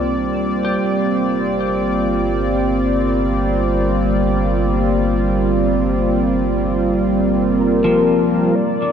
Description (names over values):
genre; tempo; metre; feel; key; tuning
ambient; free time; none; none; unclear; A4 = 437 Hz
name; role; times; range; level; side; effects
warm analog pad; sustained chords; 0.0-8.9 s; G3 to D5; -16 LUFS; right 1 dB; chorus
clean electric guitar; arpeggios; 0.0-8.9 s; D3 to A5; -27 LUFS; left 2 dB; lush chorus, ping-pong delay
round analog bass; bass; 0.0-8.5 s; G1 to C2; -24 LUFS; equal; none
warm velvety synth lead; melody; 7.6-8.9 s; Bb4 to D5; -18 LUFS; left 3 dB; chorus, ping-pong delay
room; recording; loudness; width
wet cathedral reverb, RT60 4.9 s; none; -15 LUFS; side -8 dB against mid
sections
0.0-8.6 A section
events
fade-in on clean electric guitar 0.0-8.6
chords
0.0 Cm9; 0.8 Gm11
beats
free time